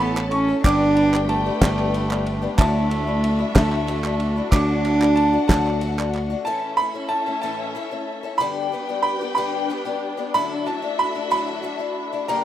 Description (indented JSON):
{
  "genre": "indie folk with a building arrangement",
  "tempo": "62 BPM (dotted quarters)",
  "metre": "6/8",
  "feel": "straight",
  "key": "D major",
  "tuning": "A4 = 440 Hz",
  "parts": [
    { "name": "bright upright piano", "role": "melody", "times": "0.0-12.4 s", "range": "A5 to D6", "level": "-25 LUFS", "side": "right 2 dB", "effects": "none" },
    { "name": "warm cello", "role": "second line", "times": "0.0-5.8 s", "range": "A3 to D4", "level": "-21 LUFS", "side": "right 2 dB", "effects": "plate reverb, digital delay" },
    { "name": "picked twelve-string acoustic guitar", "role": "accompaniment", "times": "0.0-12.4 s", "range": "G2 to A4", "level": "-28 LUFS", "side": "left 9 dB", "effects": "plate reverb" },
    { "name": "warm studio string section", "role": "sustained chords", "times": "0.0-12.4 s", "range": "C#4 to A5", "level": "-30 LUFS", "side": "equal", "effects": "plate reverb" },
    { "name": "fingered electric bass", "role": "bass", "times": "0.0-6.3 s", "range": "G1 to D2", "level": "-24 LUFS", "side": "equal", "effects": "none" },
    { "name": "group handclap", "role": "percussion", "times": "0.2-6.2 s", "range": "none", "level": "-28 LUFS", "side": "right 4 dB", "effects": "none" },
    { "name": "cloth-damped thuddy drum kit", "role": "drums", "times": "0.3-6.3 s", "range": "kick drum, ride cymbal, snare drum", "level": "-18 LUFS", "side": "equal", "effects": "none" }
  ],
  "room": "light reverb",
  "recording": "rough home demo mix",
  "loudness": "-19 LUFS",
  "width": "side -12 dB against mid",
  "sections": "0.0-6.5 A section; 6.5-12.4 A section",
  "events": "none",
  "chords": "0.0 A; 0.6 G; 2.6 Dadd9; 4.5 D; 6.5 A; 8.4 G; 10.3 Dadd9",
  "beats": "| 0.65 1.62 | 2.59 3.56 | 4.53 5.50 | 6.46 7.43 | 8.40 9.37 | 10.35 11.32 | 12.29"
}